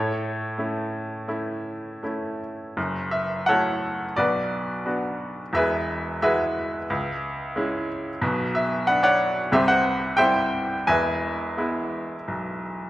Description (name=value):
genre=classical, lyrical solo piano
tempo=89 BPM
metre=4/4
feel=uneven beats, rubato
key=B dorian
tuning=A4 = 440 Hz
part: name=bright baby grand piano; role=solo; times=0.0-12.9 s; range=E1 to G#5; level=-22 LUFS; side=equal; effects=none
room=wet recital hall reverb, RT60 1.4 s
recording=recorded in a church or concert hall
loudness=-22 LUFS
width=side -15 dB against mid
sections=0.0-2.8 A section; 2.8-12.9 B section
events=none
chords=0.0 A; 2.8 F#m7; 4.2 Bm; 5.5 Eadd9; 6.9 C#m; 8.2 Bmadd9; 9.5 C; 10.9 E